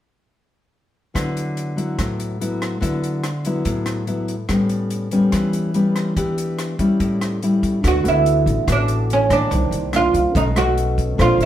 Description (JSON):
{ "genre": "bossa nova", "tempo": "144 BPM", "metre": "4/4", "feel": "straight", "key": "D major", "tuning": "A4 = 441 Hz", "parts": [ { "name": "nylon-string guitar", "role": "accompaniment", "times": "1.1-11.5 s", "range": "A2 to C5", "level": "-20 LUFS", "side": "left 2 dB", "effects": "none" }, { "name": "compact cocktail drum kit", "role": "drums", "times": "1.2-11.5 s", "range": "hi-hat, kick drum, rim click", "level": "-26 LUFS", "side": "equal", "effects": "none" }, { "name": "tine electric piano", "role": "accompaniment", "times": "7.8-11.5 s", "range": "C4 to F#5", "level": "-29 LUFS", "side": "moving between left 2 dB and right 5 dB", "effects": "auto-pan" }, { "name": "upright bass", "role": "bass", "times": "7.8-11.5 s", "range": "A1 to D2", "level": "-20 LUFS", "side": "equal", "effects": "none" }, { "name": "oud", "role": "melody", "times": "7.9-11.5 s", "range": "C#4 to F#4", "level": "-18 LUFS", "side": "right 3 dB", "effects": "none" } ], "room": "wet studio reverb, RT60 0.9 s", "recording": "heard from further back in the room", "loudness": "-17 LUFS", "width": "side -11 dB against mid", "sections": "1.2-7.8 A section; 7.8-11.5 B section", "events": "none", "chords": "1.2 D69; 4.5 A9; 6.2 Em7; 7.0 A7; 7.8 D6; 9.5 Cm9; 10.3 B9" }